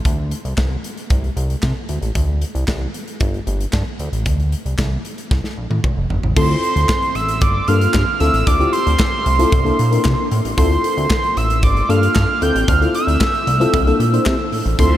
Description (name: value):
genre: early-eighties boogie funk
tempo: 114 BPM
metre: 4/4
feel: straight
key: D minor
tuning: A4 = 440 Hz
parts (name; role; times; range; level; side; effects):
- chorused synth bass; bass; 0.1-15.0 s; F1 to C3; -18 LUFS; equal; none
- modern studio drum kit; drums; 0.1-14.9 s; crash cymbal, handclaps, hi-hat, kick drum, snare drum, toms; -20 LUFS; equal; none
- fat analog lead; melody; 6.4-15.0 s; C6 to G6; -19 LUFS; right 2 dB; none
- FM electric piano with soft pad layer; accompaniment; 6.4-15.0 s; Bb3 to C5; -20 LUFS; left 2 dB; chorus
- phased string machine; sustained chords; 14.8-15.0 s; D3 to E5; -22 LUFS; right 2 dB; ensemble chorus, phaser
room: moderate huge ambient reverb, RT60 7.4 s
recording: dreamy mix soaked in reverb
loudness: -15 LUFS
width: side -12 dB against mid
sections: 0.0-6.4 A section; 6.4-15.0 B section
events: drum fill 5.3-6.4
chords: 0.0 D5; 2.2 Csus2; 3.2 N.C.; 4.0 D5; 5.3 C5; 6.4 Dm9; 7.4 Gm9; 8.2 Dm9; 9.5 C13; 10.6 Dm9; 11.6 Gm9; 12.4 Dm9; 13.7 C13